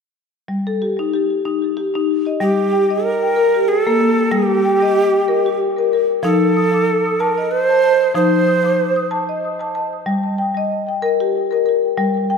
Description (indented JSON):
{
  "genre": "world meditative, meditative tuned percussion",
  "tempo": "94 BPM",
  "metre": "3/4",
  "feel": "swing 56% on 16ths",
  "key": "G minor",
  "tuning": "A4 = 441 Hz",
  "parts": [
    { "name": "marimba with medium mallets", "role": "arpeggios", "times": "0.5-12.4 s", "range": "F3 to Eb6", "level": "-17 LUFS", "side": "left 3 dB", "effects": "ping-pong delay" },
    { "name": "breathy bright Native American-style cedar flute", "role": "melody", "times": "2.4-9.1 s", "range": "G4 to C5", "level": "-16 LUFS", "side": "right 3 dB", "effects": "ping-pong delay" }
  ],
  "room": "wet echo chamber reverb, RT60 2.2 s",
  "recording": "none",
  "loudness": "-15 LUFS",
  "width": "side -6 dB against mid",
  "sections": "0.5-2.4 A section; 2.4-12.4 B section",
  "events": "none",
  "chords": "0.5 Eb/G; 2.4 Gm; 6.2 F; 10.1 Gm"
}